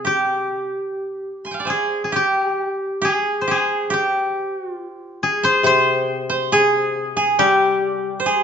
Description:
japanese traditional, Japanese chamber music; 68 BPM; 4/4; rubato; A4 = 437 Hz
koto; melody; 0.0-8.4 s; C4 to C5; -20 LUFS; left 1 dB
koto; second line; 0.0-8.4 s; C3 to C6; -22 LUFS; right 3 dB
koto; accompaniment; 0.0-8.4 s; C3 to G3; -24 LUFS; left 5 dB
moderate recital hall reverb, RT60 1.5 s; nothing above 7.6 kHz; -17 LUFS; side -7 dB against mid
0.0-2.1 A section; 2.1-8.4 B section

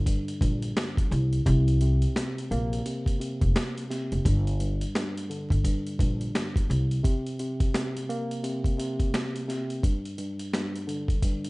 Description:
hip hop, boom-bap hip-hop; 86 BPM; 4/4; swing 61% on 16ths; A4 = 440 Hz
tine electric piano; accompaniment; 0.0-11.5 s; G2 to Bb3; -32 LUFS; equal; medium stereo tremolo, cassette tape, high-pass filter, low-pass filter
upright bass; bass; 0.0-7.0 s; F1 to C2; -25 LUFS; equal
boom bap sampler-style drum kit; drums; 0.1-11.5 s; hi-hat, kick drum, snare drum; -28 LUFS; equal
light reverb; rough home demo mix, vinyl crackle, nothing above 10.3 kHz; -25 LUFS; side -25 dB against mid
0.0-11.5 A section
0.0 G5; 1.1 Fsus4 (rootless); 4.3 G5; 6.7 Bbsus2/C; 9.8 G5

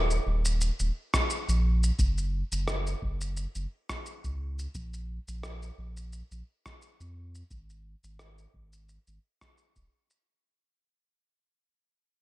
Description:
sunset chillout; 87 BPM; 4/4; swing 54% on 16ths; A4 = 438 Hz
warm sub bass; bass; 0.0-9.9 s; Eb1 to F2; -29 LUFS; equal
electronic shaker and rim click; drums; 0.1-10.2 s; -33 LUFS; equal
electronic kick drum; drums; 1.1-9.9 s; -31 LUFS; equal
little or no reverb; -28 LUFS; side -17 dB against mid
0.0-10.3 A section
fade-out 0.0-10.3

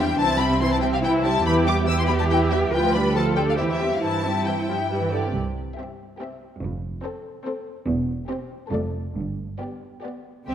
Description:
quick classical-period movement for string orchestra; 140 BPM; 3/4; straight; C major; A4 = 440 Hz
warm symphonic violin section; melody; 0.0-10.5 s; C5 to E6; -27 LUFS; left 6 dB
dark symphonic violin section; second line; 0.0-10.5 s; E4 to E5; -28 LUFS; left 2 dB
warm symphonic viola section; accompaniment; 0.0-10.5 s; C3 to F4; -28 LUFS; equal
warm studio cello section; bass; 0.0-10.5 s; C2 to B4; -27 LUFS; right 2 dB
warm symphonic double bass section; bass; 0.0-10.5 s; E1 to G2; -26 LUFS; right 3 dB
wet scoring stage reverb, RT60 1.6 s; -20 LUFS; side -9 dB against mid
0.0-5.3 A section; 5.3-10.5 B section
0.2 C; 1.5 Em; 2.7 G7/D; 3.6 C/E; 4.0 C/G; 4.9 G; 5.3 C; 6.6 F; 7.9 C/E; 8.7 Dm/F; 9.2 G

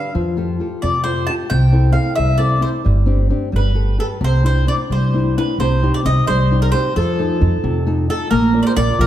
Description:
italian folk, Italian serenade; 88 BPM (dotted quarters); 6/8; straight; C major, C minor from 5.6 s; A4 = 437 Hz
mandolin; melody; 0.0-9.1 s; A4 to A5; -21 LUFS; right 1 dB
nylon-string guitar; accompaniment; 0.0-9.1 s; C3 to D5; -20 LUFS; left 1 dB
upright bass; bass; 0.1-9.1 s; G1 to F2; -17 LUFS; equal
moderate scoring stage reverb, RT60 1.7 s; -14 LUFS; side -12 dB against mid
0.0-5.6 A section; 5.6-9.1 B section
0.1 Fadd9; 1.5 C6; 2.9 Gsus4; 3.5 Gadd9; 4.2 Cadd9; 5.6 Cm; 7.0 F7; 8.3 Bb

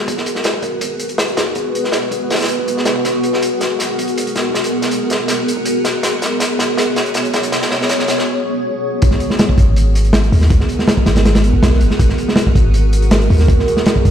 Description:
drum and bass, jungle; 161 BPM; 4/4; straight; G# minor; A4 = 440 Hz
granular cloud pad; sustained chords; 0.0-14.1 s; B3 to C#5; -18 LUFS; equal; built-in reverb
warm 808-style bass; bass; 0.0-14.1 s; F#1 to D#2; -14 LUFS; equal; high-pass filter
crunchy breakbeat drum kit; drums; 0.1-14.1 s; hi-hat, kick drum, snare drum; -16 LUFS; equal; high-pass filter on kick, high-pass filter on hats, high-pass filter on snare, high-pass filter on room
moderate lush hall reverb, RT60 2.0 s; played on a big sound system in a bare room, stone room reverb; -13 LUFS; side -9 dB against mid
0.0-9.0 A section; 9.0-14.1 B section
build-up 0.0-9.0; drum fill 3.1-8.3; break 8.3-9.0; drop 9.0-14.1
0.0 G#m9

